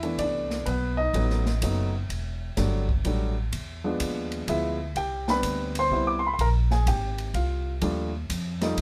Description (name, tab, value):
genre	jazz piano trio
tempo	126 BPM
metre	3/4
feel	swing 67% on 8ths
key	unclear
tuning	A4 = 442 Hz
part	warm grand piano	melody	0.0-8.8 s	E3 to D6	-30 LUFS	equal	none
part	upright bass	bass	0.0-8.8 s	E1 to F2	-30 LUFS	equal	none
part	swinging big-band drum kit	drums	0.0-8.8 s	hi-hat, kick drum, ride cymbal, snare drum	-37 LUFS	equal	none
room	light reverb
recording	none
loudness	-27 LUFS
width	mono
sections	0.0-8.8 A section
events	none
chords	0.0 G6 (rootless); 0.7 B7; 2.1 Em11; 3.5 E7b9; 5.0 Cmaj7sus2; 6.4 Bbsus2; 7.8 Ebmaj9#11